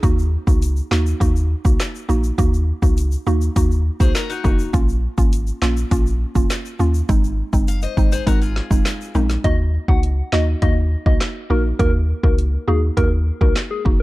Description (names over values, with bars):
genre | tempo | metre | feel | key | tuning
dancehall | 102 BPM | 4/4 | straight | Eb dorian | A4 = 441 Hz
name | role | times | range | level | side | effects
mallet-like synth pluck | accompaniment | 0.0-14.0 s | Ab3 to Gb4 | -24 LUFS | right 2 dB | chorus, sidechain pumping
punchy sub bass | bass | 0.0-14.0 s | F1 to Eb2 | -19 LUFS | equal | none
deep house drum kit | drums | 0.0-14.0 s | handclaps, hi-hat, kick drum, snare drum | -18 LUFS | equal | none
tube shaker and timbales | percussion | 0.0-9.4 s | none | -36 LUFS | left 7 dB | none
picked acoustic archtop guitar | arpeggios | 4.0-9.3 s | Eb4 to F5 | -28 LUFS | left 7 dB | none
soft struck synth lead | melody | 9.4-14.0 s | Ab4 to Gb5 | -26 LUFS | left 2 dB | chorus, tape echo
room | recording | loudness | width
little or no reverb | dark, warm production | -16 LUFS | side -19 dB against mid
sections
0.0-9.4 A section; 9.4-14.0 A section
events
none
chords
0.0 Ebm; 4.7 Bbm; 7.1 Ab; 9.4 Ebm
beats
| 0.03 0.62 1.21 1.80 | 2.38 2.97 3.56 4.15 | 4.74 5.33 5.91 6.50 | 7.09 7.68 8.27 8.86 | 9.44 10.03 10.62 11.21 | 11.80 12.38 12.97 13.56